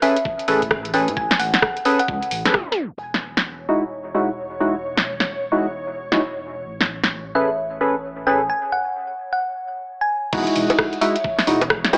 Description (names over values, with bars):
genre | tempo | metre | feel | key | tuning
UK garage, two-step garage | 131 BPM | 4/4 | swing 62% on 16ths | E major | A4 = 440 Hz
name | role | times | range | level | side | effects
thumb-piano-like synth pluck | melody | 0.0-3.0, 7.4-12.0 s | E5 to G#5 | -26 LUFS | equal | chorus, dub echo
percussive organ stab | stabs | 0.0-12.0 s | G#3 to B4 | -23 LUFS | equal | analog chorus, cassette tape, dub echo
house drum kit | drums | 0.0-7.1, 10.3-12.0 s | bongos, crash cymbal, hi-hat, rim click, snare drum | -23 LUFS | equal | small room ambience
electronic kick drum | drums | 0.3-2.7, 10.3-11.8 s | none | -33 LUFS | equal | overdrive, small room ambience
dark detuned saw bass | bass | 0.5-12.0 s | E1 to A2 | -37 LUFS | equal | sidechain pumping
ethereal airy pad | sustained chords | 3.6-12.0 s | C#5 | -36 LUFS | equal | ensemble chorus, built-in reverb, sidechain pumping
room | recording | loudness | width
light reverb, digital ambience | tape stop, AM radio sound | -21 LUFS | mono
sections
0.0-3.0 A section; 3.0-10.3 B section; 10.3-12.0 C section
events
tape stop 2.5-3.0; break 8.5-10.3; drop 10.3-12.0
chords
0.0 Amaj9; 3.0 Emaj9; 6.7 Amaj9; 10.3 Emaj9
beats
0.25 0.71 | 1.17 1.62 2.08 2.54 | 3.00 3.46 3.92 4.37 | 4.83 5.29 5.75 6.21 | 6.66 7.12 7.58 8.04 | 8.50 8.95 9.41 9.87 | 10.33 10.79 11.24 11.70